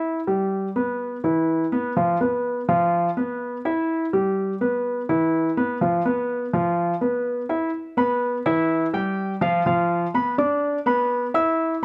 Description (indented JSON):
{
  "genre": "latin",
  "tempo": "125 BPM",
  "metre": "4/4",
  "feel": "straight",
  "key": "unclear",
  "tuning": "A4 = 435 Hz",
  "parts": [
    { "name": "warm grand piano", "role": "solo", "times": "0.0-11.8 s", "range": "E3 to E6", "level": "-23 LUFS", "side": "equal", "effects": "none" }
  ],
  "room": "light reverb",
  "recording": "none",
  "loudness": "-23 LUFS",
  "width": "mono",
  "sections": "0.0-7.7 A section; 7.7-11.8 B section",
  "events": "none",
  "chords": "0.0 Em; 2.0 E5; 3.9 Em; 5.8 E5; 7.7 Em; 9.7 Dm69/F",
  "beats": "| 0.04 0.52 1.00 1.48 | 1.96 2.44 2.93 3.41 | 3.89 4.37 4.85 5.33 | 5.81 6.29 6.77 7.25 | 7.74 8.22 8.70 9.18 | 9.66 10.14 10.62 11.10 | 11.59"
}